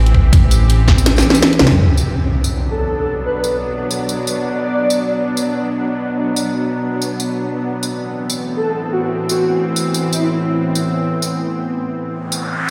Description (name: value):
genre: half-time drum and bass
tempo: 164 BPM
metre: 4/4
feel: swing 56% on 16ths, half-time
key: B phrygian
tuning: A4 = 440 Hz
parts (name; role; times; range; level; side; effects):
- bowed-like drone; sustained chords; 0.0-12.7 s; A2 to G4; -22 LUFS; equal; built-in reverb, sidechain pumping
- dark detuned saw bass; bass; 0.0-1.8 s; A1 to F#2; -14 LUFS; equal; none
- drum and bass drum kit; drums; 0.1-12.4 s; hi-hat, snare drum, tambourine; -20 LUFS; equal; none
- electronic kick drum; drums; 0.1-1.0 s; none; -13 LUFS; equal; none
- impact and noise sweep; sound effects; 1.8-3.3, 12.3-12.7 s; none; -21 LUFS; equal; none
- breathy flute-like synth lead; melody; 2.7-5.1, 8.6-10.5 s; E4 to D5; -24 LUFS; equal; ensemble chorus, digital delay
room: moderate huge ambient reverb, RT60 4.8 s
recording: played on a big sound system in a bare room, large studio reverb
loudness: -17 LUFS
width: mono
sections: 0.0-1.8 A section; 1.8-12.7 B section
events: drop 0.0-1.8; drum fill 1.1-1.8; band accent 1.7; impact 1.8-3.3; noise sweep 12.3-12.7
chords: 0.0 Am; 1.8 Bm; 7.6 Am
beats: | 0.33 0.69 1.06 1.43 | 1.79 2.16 2.52 2.89 | 3.26 3.62 3.99 4.35 | 4.72 5.08 5.45 5.82 | 6.18 6.55 6.92 7.28 | 7.65 8.01 8.38 8.74 | 9.11 9.48 9.84 10.21 | 10.57 10.94 11.30 11.67 | 12.04 12.40